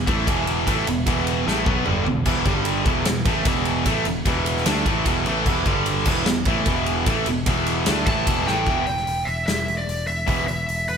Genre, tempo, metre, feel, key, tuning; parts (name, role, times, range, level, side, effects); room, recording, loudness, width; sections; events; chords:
hard rock; 150 BPM; 4/4; straight; E minor; A4 = 441 Hz
distorted electric guitar; riff; 0.0-10.4 s; E2 to D4; -25 LUFS; right 10 dB; overdrive
tight distorted guitar; riff; 0.0-10.4 s; E2 to D4; -25 LUFS; left 12 dB; distortion
picked electric bass; bass; 0.0-11.0 s; E1 to D2; -27 LUFS; equal
huge arena drum kit; drums; 0.1-11.0 s; crash cymbal, hi-hat, kick drum, ride cymbal, snare drum, toms; -24 LUFS; equal
lead guitar through a small cranked amp; melody; 8.1-11.0 s; B4 to A5; -24 LUFS; equal; overdrive
moderate recital hall reverb, RT60 1.4 s; -19 LUFS; side -7 dB against mid
0.0-8.7 A section; 8.7-11.0 B section
drum fill 1.5-2.3, 8.5
0.0 Em; 2.5 G5; 2.9 E5; 5.7 G5; 6.1 E5; 8.7 Em